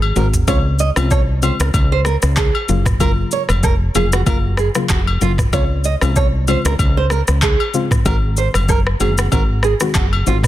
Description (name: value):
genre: afrobeats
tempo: 95 BPM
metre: 4/4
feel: swing 55% on 16ths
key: Db major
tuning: A4 = 440 Hz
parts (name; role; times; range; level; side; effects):
- woody fretless electric bass; bass; 0.0-10.5 s; F1 to Db2; -17 LUFS; equal; none
- agogo bells and woodblock; percussion; 0.0-10.3 s; none; -26 LUFS; left 6 dB; none
- soft round pluck; accompaniment; 0.2-10.5 s; Db3 to Gb4; -22 LUFS; left 4 dB; chorus
- nylon-string guitar; riff; 0.2-10.4 s; F4 to Eb5; -22 LUFS; right 7 dB; tape echo
- afro-pop drum kit; drums; 0.2-10.5 s; handclaps, kick drum, rim click, shaker, toms; -18 LUFS; equal; none
room: digital ambience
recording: dense, heavily limited modern master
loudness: -13 LUFS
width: side -14 dB against mid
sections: 0.5-10.5 A section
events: drum fill 0.0-0.5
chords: 0.5 Dbmaj7; 2.7 Gbmaj7; 5.5 Dbmaj7; 8.1 Ab7